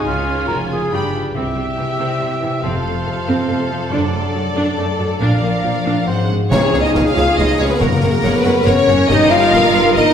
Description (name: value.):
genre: cinematic, heroic adventure film score.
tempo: 139 BPM.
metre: 3/4.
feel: straight.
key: C mixolydian, Db mixolydian from 6.5 s.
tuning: A4 = 439 Hz.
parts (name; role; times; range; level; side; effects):
clear symphonic violin section; melody; 0.0-10.1 s; Bb4 to B5; -22 LUFS; left 2 dB; none.
clear symphonic violin section; second line; 0.0-10.1 s; Db4 to Gb5; -27 LUFS; left 2 dB; none.
rich symphonic viola section; accompaniment; 0.0-10.1 s; E3 to Bb4; -22 LUFS; right 3 dB; none.
concert harp; arpeggios; 0.0-10.1 s; F2 to Eb6; -22 LUFS; left 2 dB; none.
clear symphonic cello section; bass; 0.0-10.1 s; Db2 to Db3; -24 LUFS; right 2 dB; none.
rich symphonic double bass section; bass; 0.0-10.1 s; F1 to Db2; -24 LUFS; right 2 dB; none.
mellow cor anglais; second line; 0.1-6.3 s; F4 to E5; -25 LUFS; right 2 dB; none.
mellow silver concert flute; second line; 1.3-10.1 s; Bb4 to A5; -24 LUFS; left 1 dB; none.
dark French horn section; sustained chords; 1.3-10.1 s; F3 to F4; -19 LUFS; left 2 dB; none.
timpani; percussion; 1.4-2.0, 6.5-7.1 s; C3 to Db3; -24 LUFS; right 1 dB; none.
concert snare drum, clash cymbals and concert bass drum; drums; 6.5-10.1 s; none; -23 LUFS; equal; none.
room: wet recital hall reverb, RT60 1.4 s.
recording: recorded in a church or concert hall.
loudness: -14 LUFS.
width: side -8 dB against mid.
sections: 0.0-1.4 A section; 1.4-6.5 B section; 6.5-10.1 C section.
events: none.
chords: 0.0 Db; 0.9 G7; 1.4 C; 2.6 F; 3.9 D/F#; 5.2 Bb; 6.1 Ab7; 6.5 Db; 7.8 Gb; 9.1 Eb/G.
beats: | 0.05 0.48 0.91 | 1.35 1.78 2.21 | 2.64 3.07 3.50 | 3.93 4.36 4.79 | 5.22 5.65 6.09 | 6.53 6.96 7.39 | 7.82 8.24 8.67 | 9.10 9.53 9.96.